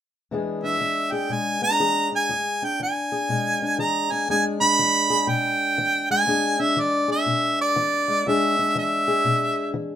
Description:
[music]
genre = acoustic country blues, solo or duo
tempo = 121 BPM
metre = 4/4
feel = swing 63% on 8ths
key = E mixolydian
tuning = A4 = 437 Hz
[part]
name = fingerpicked steel-string acoustic guitar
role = accompaniment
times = 0.3-10.0 s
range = E2 to G#4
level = -26 LUFS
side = left 3 dB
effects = none
[part]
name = clear harmonica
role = melody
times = 0.6-9.7 s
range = D5 to B5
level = -21 LUFS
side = right 2 dB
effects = none
[sound]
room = moderate studio reverb, RT60 0.8 s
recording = minimal, uncompressed stereo recording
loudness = -20 LUFS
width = side -10 dB against mid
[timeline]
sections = 0.3-4.3 A section; 4.3-10.0 B section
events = none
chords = 0.3 E7

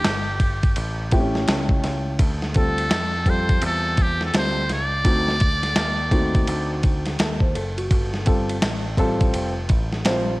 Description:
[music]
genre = hip hop, jazz-hop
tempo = 84 BPM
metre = 4/4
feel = swing 63% on 16ths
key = unclear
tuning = A4 = 439 Hz
[part]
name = trumpet with metal mute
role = melody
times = 0.0-6.8 s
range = G4 to D5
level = -25 LUFS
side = equal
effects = cassette tape, tape echo
[part]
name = dusty soul sampler-style drum kit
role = drums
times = 0.0-10.3 s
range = hi-hat, kick drum, ride cymbal, snare drum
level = -21 LUFS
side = equal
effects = cassette tape
[part]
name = picked electric bass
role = bass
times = 0.1-10.4 s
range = F1 to F2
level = -26 LUFS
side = equal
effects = none
[part]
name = dark grand piano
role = accompaniment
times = 1.1-10.3 s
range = G3 to C5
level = -26 LUFS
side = equal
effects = none
[sound]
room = digital ambience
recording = home recording on cassette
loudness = -19 LUFS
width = side -21 dB against mid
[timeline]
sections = 0.0-10.4 A section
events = none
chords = 0.0 N.C.; 0.8 A7; 2.2 Dm9; 5.0 D7b9; 7.9 Gm11

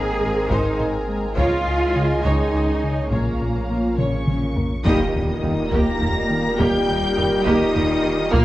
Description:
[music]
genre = cinematic, hybrid orchestral and electronic film score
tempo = 69 BPM (dotted quarters)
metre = 6/8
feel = straight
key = unclear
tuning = A4 = 442 Hz
[part]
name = clear studio violin section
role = melody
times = 0.0-8.4 s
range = Ab5 to Bb6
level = -31 LUFS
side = left 2 dB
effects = none
[part]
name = clear symphonic violin section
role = second line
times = 0.0-8.4 s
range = Ab4 to Bb5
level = -30 LUFS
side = left 2 dB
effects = none
[part]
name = clear symphonic viola section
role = accompaniment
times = 0.0-8.4 s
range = G3 to Bb4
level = -26 LUFS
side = right 1 dB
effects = none
[part]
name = dark French horn section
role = sustained chords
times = 0.0-8.4 s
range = C4 to Bb4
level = -27 LUFS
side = left 2 dB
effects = none
[part]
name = sweeping resonant pad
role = sustained chords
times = 0.0-8.4 s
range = Db3 to Db5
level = -29 LUFS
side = equal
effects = chorus
[part]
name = warm trombone section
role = sustained chords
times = 0.0-8.4 s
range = Bb2 to Bb3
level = -29 LUFS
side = right 3 dB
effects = none
[part]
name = smooth synth bass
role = riff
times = 0.0-8.4 s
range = Db2 to Bb3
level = -27 LUFS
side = left 1 dB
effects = none
[part]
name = punchy sub bass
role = bass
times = 0.0-8.4 s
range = Eb1 to Db2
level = -29 LUFS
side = equal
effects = none
[part]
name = rich symphonic cello section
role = bass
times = 0.0-8.4 s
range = Db3 to Ab4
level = -27 LUFS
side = right 1 dB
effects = none
[part]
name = clear symphonic double bass section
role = bass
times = 0.2-8.4 s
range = Ab1 to Eb2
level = -28 LUFS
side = right 2 dB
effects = none
[part]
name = taiko ensemble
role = drums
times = 0.5-8.4 s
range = none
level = -26 LUFS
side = equal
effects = none
[part]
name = impact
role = sound effects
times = 4.9-6.6 s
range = none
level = -31 LUFS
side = equal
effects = none
[sound]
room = wet recital hall reverb, RT60 1.3 s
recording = worn, warbling old tape, cassette tape, warbly pitch drift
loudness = -18 LUFS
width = side -15 dB against mid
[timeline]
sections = 0.0-4.9 A section; 4.9-8.4 A section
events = drum fill 4.0-4.9; band accent 4.9-5.4; impact 4.9-6.6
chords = 0.0 Abadd9; 1.4 Dbsus2; 3.1 Bbm; 4.9 Eb

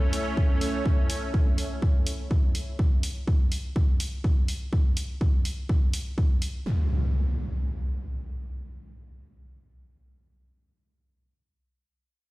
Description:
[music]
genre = melodic techno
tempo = 124 BPM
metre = 4/4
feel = straight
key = unclear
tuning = A4 = 440 Hz
[part]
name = lush unison pad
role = sustained chords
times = 0.0-2.8 s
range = A3 to E4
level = -32 LUFS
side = right 1 dB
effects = chorus, sidechain pumping
[part]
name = electronic hi-hat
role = drums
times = 0.1-6.5 s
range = none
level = -35 LUFS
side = equal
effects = overdrive
[part]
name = electronic kick drum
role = drums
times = 0.4-6.3 s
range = none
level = -23 LUFS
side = equal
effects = none
[part]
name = impact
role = sound effects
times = 6.7-10.1 s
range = none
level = -28 LUFS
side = equal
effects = none
[sound]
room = little or no reverb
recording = played on a big sound system in a bare room, stone room reverb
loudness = -24 LUFS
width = side -20 dB against mid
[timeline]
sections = 0.0-6.7 A section; 6.7-10.5 B section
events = none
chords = 0.0 A; 2.8 N.C.

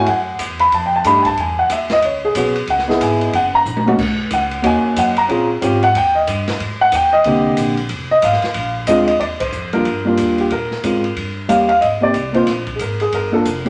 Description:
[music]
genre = jazz piano trio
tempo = 184 BPM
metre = 4/4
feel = swing 62% on 8ths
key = Eb major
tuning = A4 = 441 Hz
[part]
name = dark upright piano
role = melody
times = 0.0-13.7 s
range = D3 to B5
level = -17 LUFS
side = equal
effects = none
[part]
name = upright bass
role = bass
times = 0.0-13.7 s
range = F1 to Bb2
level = -28 LUFS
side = equal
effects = none
[part]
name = open jazz drum kit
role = drums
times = 0.1-13.7 s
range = crash cymbal, hi-hat, kick drum, ride cymbal, snare drum, toms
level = -27 LUFS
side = equal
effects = none
[sound]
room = moderate large studio reverb, RT60 1.0 s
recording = nothing above 10.6 kHz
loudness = -16 LUFS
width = mono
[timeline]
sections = 0.0-9.2 A section; 9.2-13.7 B section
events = upright piano solo 0.0-9.2; drum fill 3.7-4.0; band accent 9.4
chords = 0.1 Esus2; 0.7 F13; 1.4 E6; 2.7 Dbm7; 3.3 Gb; 4.0 Bmaj7; 5.3 Bbm7; 5.9 Eb; 6.6 Abmaj9#11; 7.9 Fm; 8.6 Bb7; 9.2 Ebmaj9; 10.5 Bbm9; 11.2 Eb7; 11.8 Abadd9; 13.1 Gm7

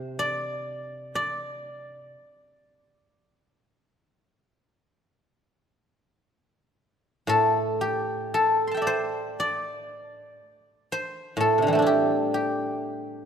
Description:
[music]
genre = chinese traditional, Chinese solo plucked strings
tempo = 55-62 BPM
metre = 4/4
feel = rubato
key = D shang mode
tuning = A4 = 440 Hz
[part]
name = guzheng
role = solo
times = 0.0-13.3 s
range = A2 to C6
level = -24 LUFS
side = equal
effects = none
[sound]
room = moderate concert hall reverb, RT60 2.3 s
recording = none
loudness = -23 LUFS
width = side -7 dB against mid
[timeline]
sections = 0.0-7.3 A section; 7.3-13.3 B section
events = none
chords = none

